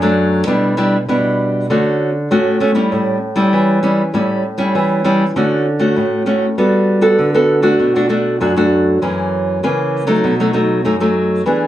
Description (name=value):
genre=samba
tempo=98 BPM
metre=4/4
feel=straight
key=D major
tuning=A4 = 440 Hz
part: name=nylon-string guitar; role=solo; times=0.0-11.7 s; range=F#2 to A4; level=-13 LUFS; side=equal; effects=none
room=light reverb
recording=none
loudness=-13 LUFS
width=side -13 dB against mid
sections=0.0-5.4 A section; 5.4-11.7 B section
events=none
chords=0.5 G6/B; 1.7 Dmaj7; 2.9 A7; 5.4 Dmaj7; 6.6 Gmaj9; 7.8 Bm7; 9.0 F#7; 10.2 B7